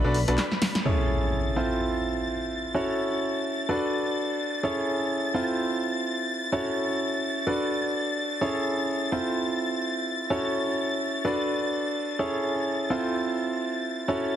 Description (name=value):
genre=piano house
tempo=127 BPM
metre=4/4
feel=swing 57% on 16ths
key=unclear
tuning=A4 = 440 Hz
part: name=dark studio violin section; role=sustained chords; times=0.0-14.4 s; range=B4 to A6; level=-32 LUFS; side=left 2 dB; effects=none
part: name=clear grand piano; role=riff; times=0.0-14.4 s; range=C4 to D5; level=-26 LUFS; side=right 1 dB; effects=digital delay
part: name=punchy analog drum machine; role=drums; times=0.1-0.8 s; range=handclaps, hi-hat, snare drum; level=-28 LUFS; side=equal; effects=none
part: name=impact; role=sound effects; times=0.9-2.7 s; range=none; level=-29 LUFS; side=equal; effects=none
room=moderate plate reverb, RT60 2.2 s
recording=heavily compressed radio sound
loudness=-25 LUFS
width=side -10 dB against mid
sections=0.9-14.4 A section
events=drum fill 0.4-0.9; band accent 0.7; impact 0.9-2.7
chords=0.0 Bm7; 0.9 Amaj7; 1.6 Fmaj7; 2.7 F#m7; 3.7 Bm7; 4.6 Amaj7; 5.3 Fmaj7; 6.5 F#m7; 7.5 Bm7; 8.4 Amaj7; 9.1 Fmaj7; 10.3 F#m7; 11.2 Bm7; 12.2 Amaj7; 12.9 Fmaj7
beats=0.38 | 0.85 1.33 1.80 2.27 | 2.74 3.22 3.69 4.16 | 4.63 5.11 5.58 6.05 | 6.52 7.00 7.47 7.94 | 8.41 8.88 9.36 9.83 | 10.30 10.78 11.25 11.72 | 12.19 12.66 13.14 13.61 | 14.08